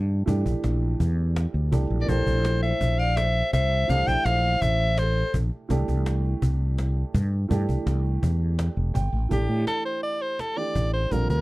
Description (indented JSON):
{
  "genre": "progressive instrumental, band music in an uneven meter",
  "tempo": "166 BPM",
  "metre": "5/4",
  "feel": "straight",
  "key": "unclear",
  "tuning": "A4 = 444 Hz",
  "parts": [
    { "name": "dark baby grand piano", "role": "accompaniment", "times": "0.0-11.4 s", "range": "D3 to G5", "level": "-32 LUFS", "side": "right 4 dB", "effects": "none" },
    { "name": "mellow fretless electric bass", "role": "bass", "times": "0.0-11.4 s", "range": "E1 to A2", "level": "-23 LUFS", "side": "equal", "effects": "none" },
    { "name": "cajon", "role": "drums", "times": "0.1-11.4 s", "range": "none", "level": "-30 LUFS", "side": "equal", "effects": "none" },
    { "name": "clear soprano saxophone", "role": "melody", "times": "2.0-5.3, 9.3-11.4 s", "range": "G4 to G5", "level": "-25 LUFS", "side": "equal", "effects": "none" },
    { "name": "vibraphone with hard mallets", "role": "second line", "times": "2.0-5.3 s", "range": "A4 to E5", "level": "-31 LUFS", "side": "left 7 dB", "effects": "none" }
  ],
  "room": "little or no reverb",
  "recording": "dry, close 1970s-style studio recording",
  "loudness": "-22 LUFS",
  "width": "side -20 dB against mid",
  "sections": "0.0-9.3 A section; 9.3-11.4 B section",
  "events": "grand piano fill 8.8-9.3",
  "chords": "0.0 C7/Bb (rootless); 2.1 Fmaj7/Bb; 5.7 C; 9.3 A5"
}